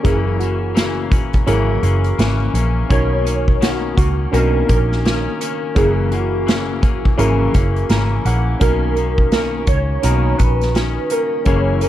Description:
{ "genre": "indie pop, bedroom pop", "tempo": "84 BPM", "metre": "4/4", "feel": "swing 60% on 16ths", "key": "B major", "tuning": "A4 = 439 Hz", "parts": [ { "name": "warbly lo-fi synth keys", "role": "melody", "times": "0.0-11.9 s", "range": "F#4 to C#5", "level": "-23 LUFS", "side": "right 1 dB", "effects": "ensemble chorus, slapback echo" }, { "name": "clean electric guitar", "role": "accompaniment", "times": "0.0-11.9 s", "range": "F#2 to C#4", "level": "-23 LUFS", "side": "left 6 dB", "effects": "analog chorus, warbly pitch drift" }, { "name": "reed electric piano", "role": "accompaniment", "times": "0.0-11.9 s", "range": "B3 to A#5", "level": "-24 LUFS", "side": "right 4 dB", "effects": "cassette tape" }, { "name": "vintage muted picked electric bass", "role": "bass", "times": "0.0-11.9 s", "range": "F#1 to C#2", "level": "-19 LUFS", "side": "equal", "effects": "none" }, { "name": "unplugged drum kit", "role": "drums", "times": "0.0-11.9 s", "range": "hi-hat, kick drum, snare drum", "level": "-18 LUFS", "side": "equal", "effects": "none" } ], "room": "little or no reverb", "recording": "dark, warm production", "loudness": "-14 LUFS", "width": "side -12 dB against mid", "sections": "0.0-11.9 A section", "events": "reed electric piano fill 7.5-8.6", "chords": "0.1 F#7; 2.9 Bmaj9; 5.8 F#7; 8.6 Bmaj9" }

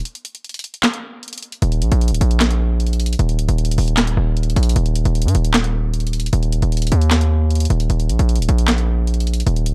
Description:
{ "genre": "hip hop, trap", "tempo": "153 BPM", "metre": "4/4", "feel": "half-time", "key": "unclear", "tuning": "A4 = 439 Hz", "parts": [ { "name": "trap drum kit", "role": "drums", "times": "0.1-9.7 s", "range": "handclaps, hi-hat, snare drum", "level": "-25 LUFS", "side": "equal", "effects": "none" }, { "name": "distorted 808-style bass", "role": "bass", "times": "1.6-9.7 s", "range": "D1 to G2", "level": "-18 LUFS", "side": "equal", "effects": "distortion" } ], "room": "digital ambience", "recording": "dark, warm production", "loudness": "-18 LUFS", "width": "mono", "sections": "0.0-1.6 A section; 1.6-9.7 B section", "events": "break 0.1-1.6", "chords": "none" }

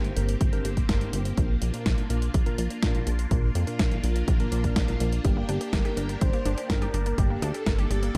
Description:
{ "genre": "italo disco", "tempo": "124 BPM", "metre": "4/4", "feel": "straight", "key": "G minor", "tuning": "A4 = 440 Hz", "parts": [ { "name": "phased string machine", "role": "sustained chords", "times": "0.0-8.2 s", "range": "Bb3 to A4", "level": "-38 LUFS", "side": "equal", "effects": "ensemble chorus, phaser" }, { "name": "tine electric piano", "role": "stabs", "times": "0.0-5.2 s", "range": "G2 to Bb4", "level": "-36 LUFS", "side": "equal", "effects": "tape echo" }, { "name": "chorused synth bass", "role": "bass", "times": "0.0-8.2 s", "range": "G1 to F2", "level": "-30 LUFS", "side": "equal", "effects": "none" }, { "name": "clean 12-bit digital drum machine", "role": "drums", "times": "0.0-8.2 s", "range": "hi-hat, snare drum", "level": "-35 LUFS", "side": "equal", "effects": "overdrive" }, { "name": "electronic kick drum", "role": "drums", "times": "0.4-8.2 s", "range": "none", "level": "-28 LUFS", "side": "equal", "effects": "none" }, { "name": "unison lead", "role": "melody", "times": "5.2-8.2 s", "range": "G4 to C5", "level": "-36 LUFS", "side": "equal", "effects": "analog chorus, tape echo" }, { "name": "analog pluck", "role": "arpeggios", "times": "5.2-8.2 s", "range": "G3 to Bb4", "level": "-38 LUFS", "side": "equal", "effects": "chorus, tape echo" } ], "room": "light reverb", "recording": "dark, warm production", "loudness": "-26 LUFS", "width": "mono", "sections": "0.0-8.2 A section", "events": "none", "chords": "0.0 Gm; 1.4 Bb; 5.2 Gm" }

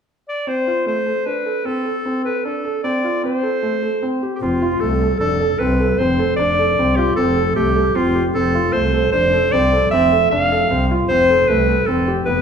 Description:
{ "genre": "contemporary instrumental, contemporary", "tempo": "153 BPM", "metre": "5/4", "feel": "straight", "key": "F lydian", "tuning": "A4 = 437 Hz", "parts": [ { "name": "bright clarinet", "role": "melody", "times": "0.3-12.4 s", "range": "F4 to F5", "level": "-18 LUFS", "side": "left 1 dB", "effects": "none" }, { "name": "felt-muted upright piano", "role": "arpeggios", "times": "0.5-12.4 s", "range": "A3 to A4", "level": "-20 LUFS", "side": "right 2 dB", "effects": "none" }, { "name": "dark double bass", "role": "bass", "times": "4.4-12.4 s", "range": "F1 to C2", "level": "-21 LUFS", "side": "left 1 dB", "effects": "none" } ], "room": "wet recital hall reverb, RT60 1.5 s", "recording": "recorded in a church or concert hall", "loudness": "-15 LUFS", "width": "side -7 dB against mid", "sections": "0.5-4.4 A section; 4.4-12.4 B section", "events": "none", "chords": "0.5 F (rootless); 4.4 F" }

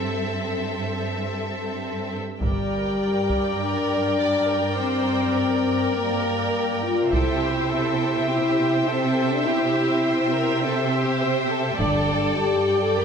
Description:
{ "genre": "cinematic, epic orchestral film score", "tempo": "102 BPM", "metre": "4/4", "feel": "straight", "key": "G dorian", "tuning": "A4 = 441 Hz", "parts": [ { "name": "rich studio violin section", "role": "melody", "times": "0.0-13.0 s", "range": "E5 to G5", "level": "-32 LUFS", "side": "left 3 dB", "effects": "none" }, { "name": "rich symphonic violin section", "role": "second line", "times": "0.0-13.0 s", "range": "G4 to D5", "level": "-29 LUFS", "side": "left 1 dB", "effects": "none" }, { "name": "rich symphonic viola section", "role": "accompaniment", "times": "0.0-13.0 s", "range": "C4 to E5", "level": "-28 LUFS", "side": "right 2 dB", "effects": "none" }, { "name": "warm studio cello section", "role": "bass", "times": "0.0-13.0 s", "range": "G2 to C3", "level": "-29 LUFS", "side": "right 3 dB", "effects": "none" }, { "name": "warm French horn section", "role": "sustained chords", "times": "2.4-13.0 s", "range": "G3 to Bb4", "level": "-23 LUFS", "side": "left 2 dB", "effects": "none" }, { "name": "rich symphonic double bass section", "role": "bass", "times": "2.4-3.0, 7.1-7.7, 11.8-12.3 s", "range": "G1 to C2", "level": "-30 LUFS", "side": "right 4 dB", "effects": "none" }, { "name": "taiko ensemble", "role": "drums", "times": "2.4-12.9 s", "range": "none", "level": "-29 LUFS", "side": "right 1 dB", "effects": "none" } ], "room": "moderate scoring stage reverb, RT60 1.7 s", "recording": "none", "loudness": "-20 LUFS", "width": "side -6 dB against mid", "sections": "0.0-2.4 A section; 2.4-13.0 B section", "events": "build-up 0.0-2.4", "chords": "0.0 Am/G; 2.4 Gm; 7.1 C; 11.8 G5" }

